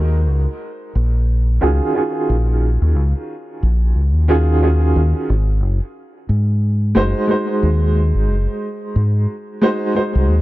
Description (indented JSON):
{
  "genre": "trip hop",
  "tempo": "90 BPM",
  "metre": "4/4",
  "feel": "swing 56% on 16ths",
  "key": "Eb dorian",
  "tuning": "A4 = 440 Hz",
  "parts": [
    { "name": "deep dub fingered electric bass", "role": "bass", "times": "0.0-10.4 s", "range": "Gb1 to Ab2", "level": "-14 LUFS", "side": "equal", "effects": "none" },
    { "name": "clear upright piano", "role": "accompaniment", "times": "1.6-10.4 s", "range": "Eb3 to C5", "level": "-19 LUFS", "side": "right 1 dB", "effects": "tremolo, low-pass filter, tape echo" }
  ],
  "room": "small room ambience",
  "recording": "dark, warm production",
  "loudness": "-15 LUFS",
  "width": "side -17 dB against mid",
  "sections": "0.0-10.4 A section",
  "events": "filter sweep on upright piano 0.0-10.4",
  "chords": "0.0 Ebm11; 5.3 Ab7",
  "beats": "0.62 1.29 1.96 | 2.62 3.29 3.96 4.62 | 5.29 5.96 6.62 7.29 | 7.96 8.62 9.29 9.96"
}